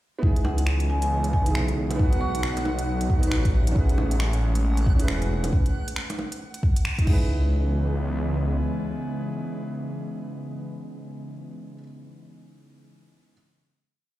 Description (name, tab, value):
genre	future garage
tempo	136 BPM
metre	4/4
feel	swing 61% on 16ths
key	C# minor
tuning	A4 = 445 Hz
part	felt-muted upright piano	accompaniment	0.2-13.3 s	B3 to B4	-34 LUFS	right 2 dB	sidechain pumping, tape echo
part	airy breathy pad	sustained chords	0.6-11.6 s	C#3 to D#4	-32 LUFS	equal	chorus, sidechain pumping
part	swelling detuned saw bass	bass	0.2-8.6 s	E1 to C#2	-24 LUFS	equal	tube saturation, sidechain pumping
part	electronic kick drum	drums	0.2-7.2 s	none	-21 LUFS	equal	none
part	backwards swelling texture	texture	1.5-5.5 s	F#5	-38 LUFS	right 4 dB	built-in reverb
part	marimba with hard mallets	melody	0.4-2.6 s	F#5 to C#6	-32 LUFS	equal	tape echo
part	organic electronic drum kit	drums	0.4-7.2 s	bongos, crash cymbal, finger snaps, hi-hat	-32 LUFS	equal	none
room	light reverb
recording	played on a big sound system in a bare room, large studio reverb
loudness	-22 LUFS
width	side -15 dB against mid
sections	0.2-7.3 groove; 7.3-10.8 final hit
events	band accent 6.8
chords	0.2 C#m7; 2.0 B; 3.8 Amaj7; 5.5 N.C.; 7.1 C#m7